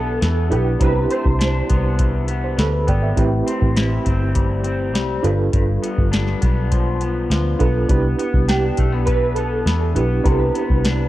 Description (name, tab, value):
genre	indie pop, bedroom pop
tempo	102 BPM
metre	4/4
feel	straight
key	C major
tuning	A4 = 437 Hz
part	warbly lo-fi synth keys	melody	0.0-2.0, 8.5-11.1 s	G4 to C5	-24 LUFS	right 2 dB	ensemble chorus, slapback echo
part	electric guitar through a small old amp	accompaniment	0.0-11.1 s	G2 to E4	-25 LUFS	left 4 dB	lush chorus, vibrato effect
part	reed electric piano	accompaniment	0.0-11.1 s	C4 to B5	-24 LUFS	right 5 dB	fast tremolo
part	vintage muted picked electric bass	bass	0.0-11.1 s	G1 to E2	-20 LUFS	equal	none
part	soft vintage rhythm box	drums	0.2-11.0 s	hi-hat, kick drum, snare drum	-21 LUFS	equal	overdrive
room	digital ambience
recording	dry, close 1970s-style studio recording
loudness	-16 LUFS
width	side -15 dB against mid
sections	0.0-11.1 A section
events	reed electric piano fill 2.3-3.2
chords	0.0 Cmaj9; 3.2 Am7; 5.2 G7; 7.9 Cmaj9